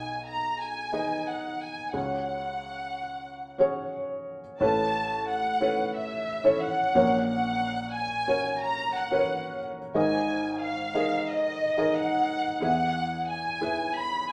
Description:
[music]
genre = pop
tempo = 90 BPM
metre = 4/4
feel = straight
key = F# major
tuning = A4 = 440 Hz
[part]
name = warm studio violin section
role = melody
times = 0.0-14.3 s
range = D#5 to B5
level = -31 LUFS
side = equal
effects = none
[part]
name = felt-muted upright piano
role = accompaniment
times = 0.0-14.3 s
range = G#1 to E5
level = -30 LUFS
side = equal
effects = none
[sound]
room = wet studio reverb, RT60 0.8 s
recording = band playing live in one room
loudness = -28 LUFS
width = mono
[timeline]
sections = 0.0-4.6 A section; 4.6-14.3 B section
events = none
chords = 0.0 G#m/B; 1.9 C#sus4; 4.6 Aadd9; 7.0 F#/A#; 10.0 G#sus2; 12.6 E

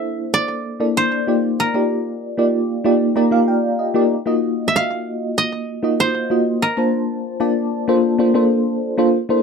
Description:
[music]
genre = pop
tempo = 96 BPM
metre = 4/4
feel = straight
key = Bb major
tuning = A4 = 440 Hz
[part]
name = koto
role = melody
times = 0.0-8.5 s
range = Bb4 to F5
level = -21 LUFS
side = right 2 dB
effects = slapback echo
[part]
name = bell-like FM electric piano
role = accompaniment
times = 0.0-9.4 s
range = Bb3 to Bb5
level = -17 LUFS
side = equal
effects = tremolo, wide subtle chorus
[sound]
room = light reverb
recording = dry, close 1970s-style studio recording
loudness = -16 LUFS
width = side -5 dB against mid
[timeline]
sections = 0.0-9.4 A section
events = FM electric piano fill 2.9-4.1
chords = 0.0 C13; 1.3 F13sus4; 4.1 Ebmadd9; 6.6 Bbmaj9

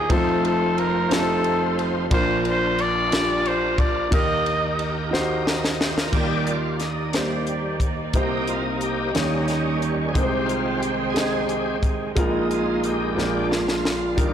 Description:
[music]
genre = slow gospel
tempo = 60 BPM (dotted quarters)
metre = 6/8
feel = straight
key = Eb major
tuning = A4 = 439 Hz
[part]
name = growling trumpet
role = melody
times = 0.0-4.8 s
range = Ab4 to Eb5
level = -23 LUFS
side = left 1 dB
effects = none
[part]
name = warm concert grand piano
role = accompaniment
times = 0.0-14.3 s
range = F1 to Eb5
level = -24 LUFS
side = equal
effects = none
[part]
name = bright tonewheel organ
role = sustained chords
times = 0.0-14.3 s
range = Bb2 to Eb5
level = -27 LUFS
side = right 1 dB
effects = slow rotary speaker, overdrive, chorus vibrato
[part]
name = crisp fusion drum kit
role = drums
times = 0.1-14.3 s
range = crash cymbal, hi-hat, kick drum, ride cymbal, snare drum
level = -25 LUFS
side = equal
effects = none
[part]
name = warm studio string section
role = sustained chords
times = 6.1-14.3 s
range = C3 to G5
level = -32 LUFS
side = equal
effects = none
[sound]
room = moderate echo chamber reverb, RT60 1.5 s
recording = blown-out, overdriven recording, overdrive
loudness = -20 LUFS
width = side -9 dB against mid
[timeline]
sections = 0.0-6.1 A section; 6.1-14.3 B section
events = drum fill 5.1-6.1, 13.2-14.2; tonewheel organ solo 6.1-14.3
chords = 0.1 F7; 2.1 Bb; 4.1 Eb; 6.1 Ebmaj7; 8.1 Cm7; 9.1 Eb7; 10.2 Abmaj7/C; 12.2 Bb7sus4; 13.2 Bb7

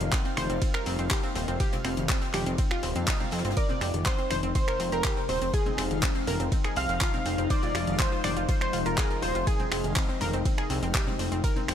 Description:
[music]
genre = progressive house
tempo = 122 BPM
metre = 4/4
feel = straight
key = F dorian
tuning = A4 = 440 Hz
[part]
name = evolving wavetable pad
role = sustained chords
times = 0.0-11.7 s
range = C3 to Eb4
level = -36 LUFS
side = left 3 dB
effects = chorus, built-in reverb, sidechain pumping
[part]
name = fat analog bass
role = bass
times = 0.0-11.7 s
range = Eb1 to F2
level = -31 LUFS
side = equal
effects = sidechain pumping
[part]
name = deep house drum kit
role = drums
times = 0.0-11.7 s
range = finger snaps, handclaps, hi-hat, ride cymbal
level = -33 LUFS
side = equal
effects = overdrive
[part]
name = congas and bongos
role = percussion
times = 0.0-11.7 s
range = none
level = -38 LUFS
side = left 3 dB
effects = sidechain pumping on perc
[part]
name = backwards swelling texture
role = texture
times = 0.0-11.7 s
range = Eb4 to F5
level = -40 LUFS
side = left 1 dB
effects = built-in reverb, sidechain pumping
[part]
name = analog pluck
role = arpeggios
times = 0.1-11.7 s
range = C4 to D5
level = -34 LUFS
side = right 1 dB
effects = chorus, sidechain pumping, digital delay
[part]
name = electronic kick drum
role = drums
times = 0.1-11.5 s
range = none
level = -28 LUFS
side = equal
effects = overdrive
[part]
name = jazz brush drum kit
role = drums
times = 0.1-11.7 s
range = hi-hat, snare drum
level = -44 LUFS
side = left 2 dB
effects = none
[part]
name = plucky unison lead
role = melody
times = 3.6-9.9 s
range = Ab4 to F5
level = -33 LUFS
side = right 1 dB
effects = analog chorus, sidechain pumping, digital delay
[part]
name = soft round pluck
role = second line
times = 3.6-9.9 s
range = Ab5 to F6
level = -37 LUFS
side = equal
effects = analog chorus, sidechain pumping, digital delay
[sound]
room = little or no reverb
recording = none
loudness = -25 LUFS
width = side -9 dB against mid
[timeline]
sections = 0.0-11.7 A section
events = none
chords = 0.0 Cm7; 3.6 Fm7

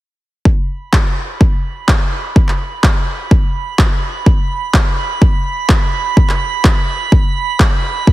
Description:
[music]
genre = progressive house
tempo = 126 BPM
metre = 4/4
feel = straight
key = unclear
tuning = A4 = 440 Hz
[part]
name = electronic kick drum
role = drums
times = 0.5-8.1 s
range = none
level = -11 LUFS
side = equal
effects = none
[part]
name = drifting glass-harmonics texture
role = texture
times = 1.2-8.1 s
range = B5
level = -22 LUFS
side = right 7 dB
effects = chorus, built-in reverb, sidechain pumping
[part]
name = electronic handclaps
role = drums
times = 0.9-7.7 s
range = none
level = -19 LUFS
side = equal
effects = overdrive
[sound]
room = light reverb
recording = heavily compressed radio sound, multiband compression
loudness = -12 LUFS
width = side -16 dB against mid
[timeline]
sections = 0.5-8.1 A section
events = none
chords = none

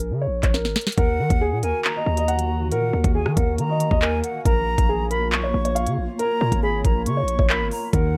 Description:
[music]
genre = hip hop, drill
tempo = 138 BPM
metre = 4/4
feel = half-time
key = Eb minor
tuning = A4 = 440 Hz
[part]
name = dark concert grand piano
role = melody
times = 0.0-8.2 s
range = Ab4 to Gb5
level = -28 LUFS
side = equal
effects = none
[part]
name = distorted 808-style bass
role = bass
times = 0.0-8.2 s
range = Ab1 to Eb3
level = -26 LUFS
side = equal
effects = distortion
[part]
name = drill drum kit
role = drums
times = 0.0-8.0 s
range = handclaps, hi-hat, kick drum, rim click, snare drum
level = -24 LUFS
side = equal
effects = none
[part]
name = concert flute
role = second line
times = 1.0-8.2 s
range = Gb5 to Db6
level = -31 LUFS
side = equal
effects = digital delay
[part]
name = granular cloud pad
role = sustained chords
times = 1.7-8.2 s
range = Eb3 to Db5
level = -34 LUFS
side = equal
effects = built-in reverb
[part]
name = mellow tine electric piano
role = accompaniment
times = 7.9-8.2 s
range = Eb3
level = -24 LUFS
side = equal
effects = none
[sound]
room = little or no reverb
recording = none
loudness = -22 LUFS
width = mono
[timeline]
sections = 1.0-8.2 A section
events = drum fill 0.5-1.0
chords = 0.0 Bbm; 1.0 Ebm; 4.5 Bbm

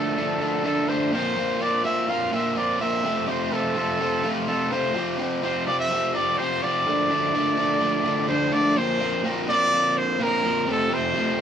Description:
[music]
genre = rock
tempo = 126 BPM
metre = 4/4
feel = straight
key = unclear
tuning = A4 = 440 Hz
[part]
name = clear trumpet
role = melody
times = 0.0-11.4 s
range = A4 to F5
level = -24 LUFS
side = equal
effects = none
[part]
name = crunchy overdriven guitar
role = riff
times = 0.0-11.4 s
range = F2 to G4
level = -24 LUFS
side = equal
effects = none
[sound]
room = moderate studio reverb, RT60 0.9 s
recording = band playing live in one room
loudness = -21 LUFS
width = side -8 dB against mid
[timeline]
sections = 0.0-1.1 A section; 1.1-8.8 B section; 8.8-11.4 C section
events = none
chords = 0.0 Dm; 1.1 Bbsus2; 3.0 F; 4.9 Csus4; 6.9 Dm; 8.8 Bbsus2; 10.7 F

